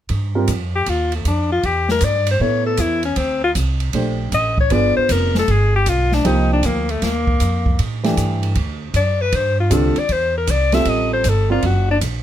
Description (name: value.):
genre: jazz, small-group swing and bop.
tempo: 156 BPM.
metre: 4/4.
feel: swing 66% on 8ths.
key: G minor.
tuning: A4 = 444 Hz.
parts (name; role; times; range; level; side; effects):
upright bass; bass; 0.1-12.2 s; F1 to A2; -19 LUFS; right 1 dB; none.
open jazz drum kit; drums; 0.1-12.1 s; hi-hat, kick drum, ride cymbal, snare drum; -25 LUFS; right 1 dB; none.
warm baby grand piano; accompaniment; 0.4-11.6 s; D3 to D5; -21 LUFS; right 3 dB; none.
clear alto saxophone; melody; 0.8-12.0 s; A3 to E5; -19 LUFS; left 4 dB; none.
room: little or no reverb.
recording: close, detailed microphones.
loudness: -15 LUFS.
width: side -11 dB against mid.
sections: 0.1-12.2 A section.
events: none.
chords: 0.1 G7(no3); 1.6 Em7; 2.4 A; 3.2 D5; 4.7 G7b9; 6.3 Cm11; 7.8 A5; 8.6 D; 9.3 G7sus4; 10.1 C69; 10.9 Gm11; 11.6 F#.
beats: | 0.09 0.48 0.86 1.25 | 1.64 2.02 2.40 2.79 | 3.17 3.56 3.94 4.33 | 4.71 5.10 5.48 5.87 | 6.25 6.64 7.02 7.41 | 7.79 8.18 8.56 8.95 | 9.33 9.71 10.10 10.48 | 10.87 11.25 11.63 12.02.